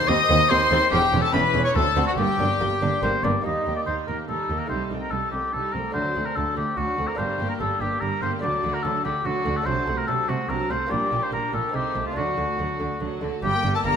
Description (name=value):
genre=classical, baroque-style concerto movement with solo episodes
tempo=144 BPM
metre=3/4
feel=straight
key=G minor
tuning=A4 = 439 Hz
part: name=rich chamber violin section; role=melody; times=0.0-14.0 s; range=F#5 to Eb6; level=-31 LUFS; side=left 5 dB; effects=none
part: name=warm oboe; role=melody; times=0.0-14.0 s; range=F4 to Eb5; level=-25 LUFS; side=left 2 dB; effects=none
part: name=rich chamber violin section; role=second line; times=0.0-14.0 s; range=C4 to Bb5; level=-31 LUFS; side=left 4 dB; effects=none
part: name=lute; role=accompaniment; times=0.0-14.0 s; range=D2 to Bb4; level=-32 LUFS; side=equal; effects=none
part: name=warm chamber viola section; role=accompaniment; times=0.1-13.9 s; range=F#3 to C#4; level=-32 LUFS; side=right 1 dB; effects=none
part: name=rich chamber double bass section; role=bass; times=0.1-13.9 s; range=E1 to Eb2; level=-30 LUFS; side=right 3 dB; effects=none
part: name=warm chamber cello section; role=bass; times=0.1-13.9 s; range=C2 to D3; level=-30 LUFS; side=right 3 dB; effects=none
room=moderate scoring stage reverb, RT60 1.9 s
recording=minimal, uncompressed stereo recording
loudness=-21 LUFS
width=side -7 dB against mid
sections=0.0-3.4 A section; 3.4-13.4 B section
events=none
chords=0.0 Cm/Eb; 0.9 Em6; 1.8 D7; 2.2 Gm; 3.4 Eb; 4.7 Am7b5/C; 6.0 D7; 7.2 Gm; 8.4 D; 9.7 D7/C; 10.9 Gm/Bb; 11.7 Adim/C; 12.2 D; 13.4 Gm